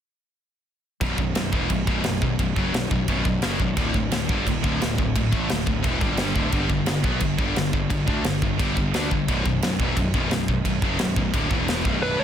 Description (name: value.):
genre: heavy metal.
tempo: 174 BPM.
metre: 4/4.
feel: straight.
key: B minor.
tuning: A4 = 440 Hz.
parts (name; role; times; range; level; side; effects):
high-gain distorted guitar; riff; 1.0-12.2 s; B1 to D4; -26 LUFS; left 9 dB; distortion.
scooped high-gain guitar; riff; 1.0-12.2 s; B1 to D4; -27 LUFS; right 9 dB; distortion.
fuzz picked electric bass; bass; 1.0-12.2 s; B0 to D2; -28 LUFS; equal; overdrive.
tight metal drum kit; drums; 1.0-11.9 s; crash cymbal, kick drum, snare drum; -25 LUFS; equal; none.
dark smooth lead guitar; melody; 12.0-12.2 s; B4 to C#5; -23 LUFS; right 1 dB; overdrive.
room: studio reverb.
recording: dense, heavily limited modern master.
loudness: -21 LUFS.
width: side -9 dB against mid.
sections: 1.0-12.0 A section.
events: none.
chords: 1.0 B5; 3.8 D5; 6.0 G5; 6.4 D5; 6.5 G5; 9.3 Bm; 11.5 E5; 11.9 B5.